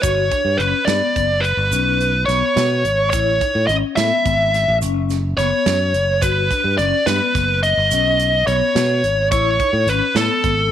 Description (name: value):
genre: progressive instrumental, band music in an uneven meter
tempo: 213 BPM (eighths)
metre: 11/8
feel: straight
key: unclear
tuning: A4 = 442 Hz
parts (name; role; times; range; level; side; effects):
- biting lead guitar; melody; 0.0-10.7 s; A4 to E5; -17 LUFS; equal; overdrive
- vibraphone with medium mallets; arpeggios; 0.0-10.5 s; B3 to F#4; -26 LUFS; left 13 dB; none
- modern bright fingered electric bass; bass; 0.0-10.7 s; F#1 to B2; -21 LUFS; equal; none
- modern studio drum kit; drums; 0.0-10.6 s; hi-hat, kick drum, snare drum; -24 LUFS; right 4 dB; none
- egg shaker; percussion; 0.0-10.0 s; none; -32 LUFS; right 22 dB; none
room: light reverb, small room ambience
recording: 1960s-style stereo with parts hard left and right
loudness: -15 LUFS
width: side -10 dB against mid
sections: 0.0-10.7 A section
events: none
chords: 0.0 Gmaj7; 1.7 Bsus2; 3.1 Amaj7; 4.8 F#5; 6.2 Gmaj7; 7.9 Badd9; 9.3 Amaj7